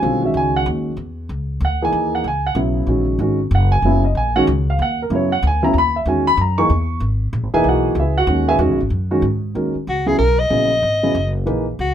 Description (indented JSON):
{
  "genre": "jazz",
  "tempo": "189 BPM",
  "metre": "3/4",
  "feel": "swing 63% on 8ths",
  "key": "Eb phrygian",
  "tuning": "A4 = 440 Hz",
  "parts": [
    { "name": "dark grand piano", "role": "accompaniment", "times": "0.0-11.6 s", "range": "Db3 to Db6", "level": "-17 LUFS", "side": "right 1 dB", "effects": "none" },
    { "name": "upright bass", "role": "bass", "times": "0.0-11.9 s", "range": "E1 to G#2", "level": "-20 LUFS", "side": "equal", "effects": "none" },
    { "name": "warm soprano saxophone", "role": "melody", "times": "9.9-11.9 s", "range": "Gb4 to Eb5", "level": "-17 LUFS", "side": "equal", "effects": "none" }
  ],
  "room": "light reverb",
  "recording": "minimal, uncompressed stereo recording",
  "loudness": "-15 LUFS",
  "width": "side -10 dB against mid",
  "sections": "0.0-9.6 A section; 9.6-11.9 B section",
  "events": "none",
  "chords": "0.0 E; 1.9 Ebm7; 5.7 E; 9.6 Ebm7"
}